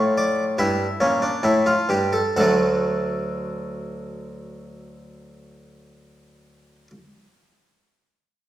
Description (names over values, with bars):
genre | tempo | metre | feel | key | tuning
classical, baroque-style 3-part fugue for harpsichord | 63-75 BPM | 4/4 | straight | unclear | A4 = 440 Hz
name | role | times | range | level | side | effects
harpsichord | solo | 0.0-6.9 s | D2 to F#5 | -20 LUFS | equal | none
room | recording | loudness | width
wet recital hall reverb, RT60 1.4 s | heard from further back in the room | -19 LUFS | side -13 dB against mid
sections
0.0-2.4 A section; 2.4-6.2 B section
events
slowing down 0.0-2.4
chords
0.0 A7; 2.4 D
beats
0.59 1.45 | 2.37 3.31 4.26 5.21